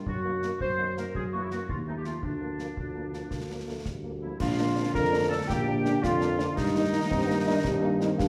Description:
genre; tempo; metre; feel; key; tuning
military-style march for wind band; 111 BPM (dotted quarters); 6/8; straight; Bb major; A4 = 440 Hz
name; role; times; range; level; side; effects
warm woodwind section; second line; 0.1-8.3 s; D4 to C5; -36 LUFS; equal; none
warm tuba; bass; 0.1-8.3 s; Bb1 to G2; -33 LUFS; equal; none
concert bass drum, concert snare drum and clash cymbals; drums; 0.1-8.3 s; none; -38 LUFS; equal; none
mellow cornet; melody; 0.2-8.3 s; Bb3 to Bb4; -37 LUFS; equal; none
warm French horn section; accompaniment; 0.2-8.1 s; Eb3 to Eb4; -38 LUFS; equal; none
mellow euphonium; second line; 2.8-8.3 s; F3 to Eb4; -38 LUFS; equal; none
mellow hollow flute section; second line; 4.2-8.3 s; Eb5 to Bb5; -40 LUFS; equal; none
dark trombone section; sustained chords; 4.4-8.3 s; D3 to Bb3; -38 LUFS; equal; none
room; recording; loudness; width
wet recital hall reverb, RT60 1.4 s; recorded in a church or concert hall; -28 LUFS; mono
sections
0.0-4.4 A section; 4.4-8.3 A section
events
none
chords
0.1 Ebm/Gb; 1.1 Gb7; 1.7 F7/Eb; 2.2 Bb/D; 4.4 Bb; 6.6 Eb/G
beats
| 0.06 0.60 | 1.14 1.69 | 2.23 2.77 | 3.31 3.86 | 4.40 4.94 | 5.48 6.03 | 6.57 7.11 | 7.65 8.19

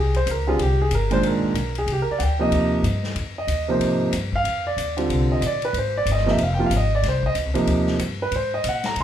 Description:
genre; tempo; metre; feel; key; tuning
jazz piano trio; 186 BPM; 4/4; swing 62% on 8ths; C minor; A4 = 440 Hz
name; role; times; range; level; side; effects
warm grand piano; melody; 0.0-9.0 s; Bb2 to Bb5; -21 LUFS; right 2 dB; none
upright bass; bass; 0.0-9.0 s; F1 to C3; -24 LUFS; left 1 dB; none
swinging big-band drum kit; drums; 0.1-9.0 s; hi-hat, kick drum, ride cymbal, snare drum; -32 LUFS; left 4 dB; none
room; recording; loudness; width
moderate large studio reverb, RT60 0.9 s; band playing live in one room; -19 LUFS; side -10 dB against mid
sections
0.0-9.0 A section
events
grand piano solo 0.0-9.0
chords
0.0 N.C.; 0.6 Cm7; 3.2 Fm7; 7.0 Cm7; 8.3 Ab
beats
0.27 | 0.59 0.92 1.24 1.56 | 1.88 2.20 2.52 2.85 | 3.17 3.49 3.81 4.13 | 4.46 4.78 5.10 5.42 | 5.74 6.07 6.39 6.71 | 7.03 7.35 7.68 8.00 | 8.32 8.64 8.96

